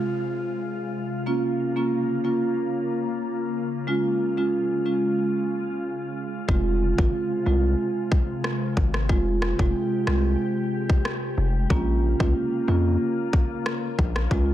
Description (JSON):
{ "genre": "dancehall", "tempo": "92 BPM", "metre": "4/4", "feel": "straight", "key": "unclear", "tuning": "A4 = 440 Hz", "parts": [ { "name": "glassy FM pad", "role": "sustained chords", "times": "0.0-14.5 s", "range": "C3 to G4", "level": "-30 LUFS", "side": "left 3 dB", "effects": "ensemble chorus, built-in reverb, sidechain pumping" }, { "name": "downlifter", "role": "sound effects", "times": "0.0-1.3 s", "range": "none", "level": "-51 LUFS", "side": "left 1 dB", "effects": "none" }, { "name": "marimba with soft mallets", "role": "accompaniment", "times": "1.3-14.4 s", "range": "Ab3 to F4", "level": "-26 LUFS", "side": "right 2 dB", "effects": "none" }, { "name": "hard-hitting 808-style bass", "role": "bass", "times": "6.5-14.5 s", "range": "F1 to F2", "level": "-23 LUFS", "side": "left 1 dB", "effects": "none" }, { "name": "island pop drum kit", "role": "drums", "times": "6.5-14.5 s", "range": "kick drum, rim click", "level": "-24 LUFS", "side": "equal", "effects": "overdrive, vintage 12-bit sampler grit" } ], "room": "light reverb, digital ambience", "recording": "none", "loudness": "-22 LUFS", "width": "side -12 dB against mid", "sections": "0.0-14.5 A section", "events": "none", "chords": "0.0 Fm; 1.3 Bbm; 3.9 Db; 6.5 Fm; 11.7 Bbm", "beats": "0.61 | 1.27 1.92 2.57 3.22 | 3.88 4.53 5.18 5.83 | 6.48 7.14 7.79 8.44 | 9.09 9.74 10.40 11.05 | 11.70 12.35 13.01 13.66 | 14.31" }